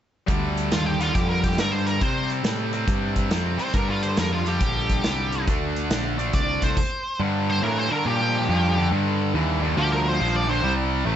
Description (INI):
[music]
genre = blues rock power trio and southern rock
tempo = 139 BPM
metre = 4/4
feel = swing 66% on 8ths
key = G minor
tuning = A4 = 442 Hz
[part]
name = tight distorted guitar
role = riff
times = 0.3-11.2 s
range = G2 to D4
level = -25 LUFS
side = equal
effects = distortion
[part]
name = growling picked electric bass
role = bass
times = 0.3-11.2 s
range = A1 to C3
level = -25 LUFS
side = equal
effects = overdrive
[part]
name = big rock drum kit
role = drums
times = 0.3-6.9 s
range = crash cymbal, hi-hat, kick drum, snare drum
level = -26 LUFS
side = equal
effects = none
[part]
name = octave-fuzz lead guitar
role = melody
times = 0.7-10.7 s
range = F4 to D5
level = -26 LUFS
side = equal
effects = wah, distortion, slapback echo, plate reverb
[sound]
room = light reverb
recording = nothing above 7.9 kHz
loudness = -20 LUFS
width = side -10 dB against mid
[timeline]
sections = 0.3-7.2 A section; 7.2-11.2 B section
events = stop 6.8-7.2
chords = 0.3 G5; 2.0 C5; 3.7 Gm7; 5.5 D5; 7.2 Gm; 10.6 C5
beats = | 0.28 0.72 1.15 1.58 | 2.02 2.45 2.88 3.31 | 3.75 4.18 4.61 5.04 | 5.48 5.91 6.34 6.77 | 7.20 7.63 8.06 8.49 | 8.91 9.34 9.77 10.20 | 10.63 11.06